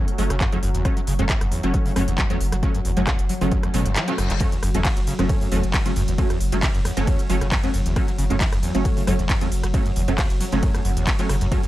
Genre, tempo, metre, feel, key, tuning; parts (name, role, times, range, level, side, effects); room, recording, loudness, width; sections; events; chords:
driving peak-time techno; 135 BPM; 4/4; straight; F# minor; A4 = 438 Hz
overdriven acid bass; riff; 0.0-11.7 s; E2 to F#3; -28 LUFS; equal; distortion, ensemble chorus, cassette tape, sidechain pumping, analog delay
rave stab; stabs; 0.0-11.6 s; F#3 to C#4; -26 LUFS; right 1 dB; chorus, built-in reverb, sidechain pumping, analog delay
deep dark ambient pad; drone; 0.0-11.7 s; F#3; -32 LUFS; left 2 dB; chorus, built-in reverb, sidechain pumping
techno drum kit; drums; 0.1-11.7 s; handclaps, hi-hat, ride cymbal, rim click; -28 LUFS; equal; overdrive, sidechain pumping on hats, sidechain pumping on cymbals
saturated sub bass; bass; 0.2-11.5 s; F#1; -24 LUFS; equal; overdrive, sidechain pumping, low-pass filter
electronic kick drum; drums; 0.4-11.6 s; -23 LUFS; equal
reverse cymbal; sound effects; 3.8-4.4 s; -34 LUFS; left 7 dB
little or no reverb; dry, gritty hardware recording; -19 LUFS; side -15 dB against mid
0.0-11.7 A section
reverse cymbal 3.8-4.4; kick drops out 4.0-4.4
0.0 F#m